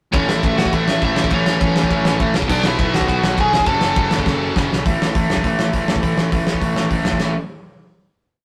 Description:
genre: punk rock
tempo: 204 BPM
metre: 4/4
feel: straight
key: A major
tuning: A4 = 445 Hz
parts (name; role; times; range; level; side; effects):
- overdriven electric guitar; melody; 0.1-4.5 s; C#4 to A5; -23 LUFS; equal; digital delay
- distorted electric guitar; riff; 0.1-7.3 s; F#2 to B3; -26 LUFS; equal; distortion
- heavy high-gain guitar; riff; 0.1-4.7 s; F#2 to B3; -30 LUFS; equal; distortion
- tight distorted guitar; riff; 0.1-7.3 s; F#2 to B3; -27 LUFS; equal; distortion
- fuzz picked electric bass; bass; 0.1-7.3 s; F#1 to F#2; -25 LUFS; equal; overdrive
- loose indie drum kit; drums; 0.1-7.3 s; crash cymbal, hi-hat, kick drum, ride cymbal, snare drum; -22 LUFS; equal; none
room: light reverb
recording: rough rehearsal-room recording, tube saturation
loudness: -18 LUFS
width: mono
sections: 0.1-4.8 riff; 4.8-7.2 outro; 7.2-8.4 final chord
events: drum fill 4.3-4.8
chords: 0.1 A; 2.3 Bm; 3.5 F#m; 4.8 A5

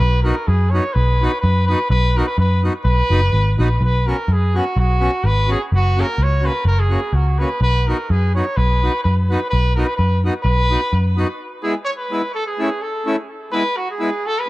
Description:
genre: alpine folk, alpine dance band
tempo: 127 BPM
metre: 2/4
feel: straight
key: B major, E major from 11.4 s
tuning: A4 = 438 Hz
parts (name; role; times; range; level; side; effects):
- clear trumpet; melody; 0.0-14.5 s; F#4 to C#5; -21 LUFS; equal; analog delay
- vintage muted picked electric bass; bass; 0.0-11.2 s; F#1 to F#2; -16 LUFS; equal; none
- accordion; accompaniment; 0.2-14.1 s; G#3 to F#4; -24 LUFS; equal; none
room: light reverb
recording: echo-heavy mix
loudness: -15 LUFS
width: side -19 dB against mid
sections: 0.0-3.8 A section; 3.8-11.4 A section; 11.4-14.5 B section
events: none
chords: 0.0 B; 3.8 Bsus2; 5.7 F#; 7.6 B; 11.4 E; 12.3 A; 13.3 E

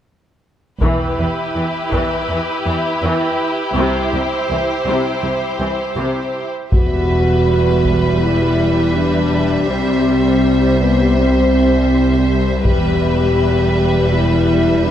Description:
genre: cinematic, epic orchestral film score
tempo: 81 BPM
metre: 4/4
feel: straight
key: E minor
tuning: A4 = 440 Hz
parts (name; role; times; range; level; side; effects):
- warm symphonic violin section; second line; 0.8-14.9 s; G4 to C5; -22 LUFS; left 2 dB; none
- warm symphonic viola section; accompaniment; 0.8-14.9 s; C3 to E4; -21 LUFS; right 1 dB; none
- rich symphonic cello section; bass; 0.8-14.9 s; C2 to E2; -20 LUFS; right 2 dB; none
- rich symphonic double bass section; bass; 0.8-14.9 s; E1 to C2; -21 LUFS; right 2 dB; none
- solo taiko drums; drums; 0.8-2.3, 6.7-8.2, 12.7-14.1 s; none; -18 LUFS; equal; none
- warm symphonic violin section; melody; 6.7-14.9 s; E5; -27 LUFS; left 1 dB; none
- mellow French horn section; sustained chords; 6.7-14.9 s; G3 to G4; -16 LUFS; left 2 dB; none
room: moderate scoring stage reverb, RT60 1.8 s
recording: none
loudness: -14 LUFS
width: side -10 dB against mid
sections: 0.8-6.7 A section; 6.7-14.9 B section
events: none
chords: 0.8 Em; 3.8 C; 6.7 Em; 9.7 C; 12.7 Em

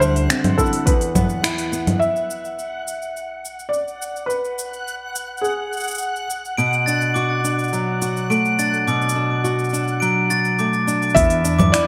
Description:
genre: folktronica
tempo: 105 BPM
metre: 4/4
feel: straight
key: unclear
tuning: A4 = 440 Hz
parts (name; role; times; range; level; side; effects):
- felt-muted upright piano; melody; 0.0-6.2, 11.1-11.9 s; G#4 to E5; -24 LUFS; equal; digital delay
- nylon-string guitar; arpeggios; 0.0-2.6, 6.6-11.9 s; E2 to F#4; -24 LUFS; equal; digital delay
- upright bass; bass; 0.0-0.3, 11.2-11.7 s; D2 to E2; -23 LUFS; equal; none
- organic electronic drum kit; drums; 0.0-11.8 s; cabasa, congas, finger snaps, hi-hat; -25 LUFS; equal; overdrive
- backwards swelling texture; texture; 0.0-11.2 s; F#5; -33 LUFS; equal; built-in reverb
- electronic kick drum; drums; 0.6-1.3, 11.2-11.3 s; none; -22 LUFS; equal; overdrive
- glockenspiel with brass mallets; second line; 6.6-11.7 s; D6 to D7; -23 LUFS; equal; digital delay
room: moderate echo chamber reverb, RT60 2.1 s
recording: faint mains hum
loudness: -20 LUFS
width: mono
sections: 0.0-2.0 A section; 2.0-11.2 B section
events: break 1.4-2.0; band accent 1.4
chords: 0.0 C/D; 0.9 E5; 2.0 N.C.; 6.6 Bm7; 11.2 E7(no3)

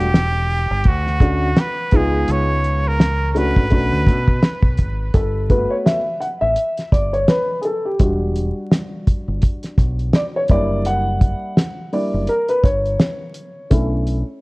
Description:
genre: hip hop, jazz-hop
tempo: 84 BPM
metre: 4/4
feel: swing 58% on 16ths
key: unclear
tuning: A4 = 440 Hz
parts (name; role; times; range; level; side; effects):
- trumpet with straight mute; melody; 0.0-4.8 s; F#4 to C#5; -23 LUFS; right 1 dB; tape echo
- dark upright piano; accompaniment; 0.0-14.4 s; G3 to F#5; -21 LUFS; equal; none
- deep dub fingered electric bass; bass; 0.0-14.2 s; E1 to B2; -21 LUFS; equal; tube saturation
- cloth-damped thuddy drum kit; drums; 0.0-14.3 s; hi-hat, kick drum, snare drum; -16 LUFS; equal; none
room: light reverb, studio ambience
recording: worn, warbling old tape, cassette tape, vinyl crackle, warbly pitch drift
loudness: -16 LUFS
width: side -24 dB against mid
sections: 0.0-5.1 A section; 5.1-14.4 B section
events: upright piano solo 5.1-14.4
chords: 0.0 Em; 0.9 D6; 1.9 C#7; 3.7 Bm7; 5.1 Gmaj7; 8.0 Em9; 10.5 F#7b9b13; 13.7 Bm11

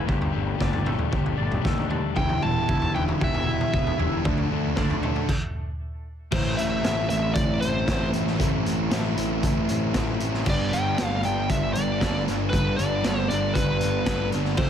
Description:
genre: quiet-loud alternative rock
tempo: 116 BPM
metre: 4/4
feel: straight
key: A minor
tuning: A4 = 440 Hz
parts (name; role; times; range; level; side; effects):
- twelve-string electric guitar; arpeggios; 0.0-5.3 s; D3 to E4; -34 LUFS; right 2 dB; lush chorus, tape echo
- overdriven electric guitar; riff; 0.0-14.7 s; F2 to A4; -30 LUFS; left 13 dB; none
- fuzz picked electric bass; bass; 0.1-14.7 s; E1 to D#2; -28 LUFS; equal; overdrive
- raw garage drum kit; drums; 0.1-14.7 s; crash cymbal, hi-hat, kick drum, snare drum, toms; -26 LUFS; equal; none
- biting lead guitar; melody; 2.2-14.7 s; B4 to A5; -29 LUFS; equal; overdrive, tape echo
- thick fuzz guitar; riff; 2.2-14.7 s; E2 to F4; -30 LUFS; right 14 dB; distortion
room: light reverb, studio reverb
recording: none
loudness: -22 LUFS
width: side -9 dB against mid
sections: 0.0-6.3 A section; 6.3-14.7 B section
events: stop 5.3-6.3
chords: 0.1 Gsus2; 2.2 Em; 4.3 Dm; 6.3 Am; 10.5 G

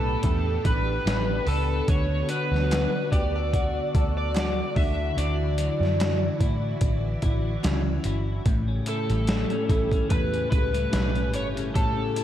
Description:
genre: indie pop, bedroom pop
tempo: 73 BPM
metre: 4/4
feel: swing 55% on 16ths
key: D major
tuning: A4 = 440 Hz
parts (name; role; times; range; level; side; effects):
- overdriven slide guitar; melody; 0.0-12.2 s; A4 to E5; -29 LUFS; equal; wide subtle chorus, diffuse ambient delay
- clean electric guitar; accompaniment; 0.0-12.2 s; A2 to B4; -31 LUFS; left 3 dB; lush chorus, vibrato effect
- string machine, full ensemble; sustained chords; 0.0-12.2 s; C#3 to G4; -34 LUFS; right 1 dB; phaser, ensemble chorus
- vintage muted picked electric bass; bass; 0.0-12.1 s; G1 to A2; -27 LUFS; equal; none
- boom bap sampler-style drum kit; drums; 0.2-12.2 s; hi-hat, kick drum, snare drum; -26 LUFS; equal; overdrive
- group handclap; percussion; 2.7-7.9 s; none; -43 LUFS; right 7 dB; none
room: moderate plate reverb, RT60 2.6 s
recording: dreamy mix soaked in reverb, cassette tape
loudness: -22 LUFS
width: side -11 dB against mid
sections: 0.0-8.5 A section; 8.5-12.2 B section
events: none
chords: 0.0 A9sus4; 1.9 D6; 4.8 Dmaj9; 8.5 A7

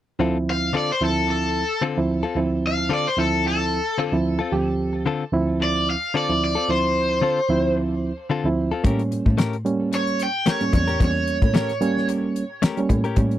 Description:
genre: straight-eighth soul blues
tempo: 111 BPM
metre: 4/4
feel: swing 54% on 16ths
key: D minor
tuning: A4 = 440 Hz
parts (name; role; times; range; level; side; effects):
- reed electric piano; accompaniment; 0.2-13.4 s; D2 to G4; -22 LUFS; right 2 dB; none
- direct-recorded clean electric guitar; stabs; 0.2-13.2 s; D3 to Bb4; -26 LUFS; left 5 dB; tape echo
- cranked stack guitar; melody; 0.5-12.1 s; A4 to G5; -24 LUFS; equal; overdrive, tape echo
- rich cello; bass; 8.8-13.4 s; E2 to A2; -24 LUFS; equal; none
- damped 70s drum kit; drums; 8.8-13.4 s; hi-hat, kick drum, snare drum; -20 LUFS; left 1 dB; none
room: little or no reverb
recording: dry, close 1970s-style studio recording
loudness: -19 LUFS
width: side -12 dB against mid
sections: 0.2-13.4 A section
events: none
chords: 0.2 Dm7; 8.8 A7b9

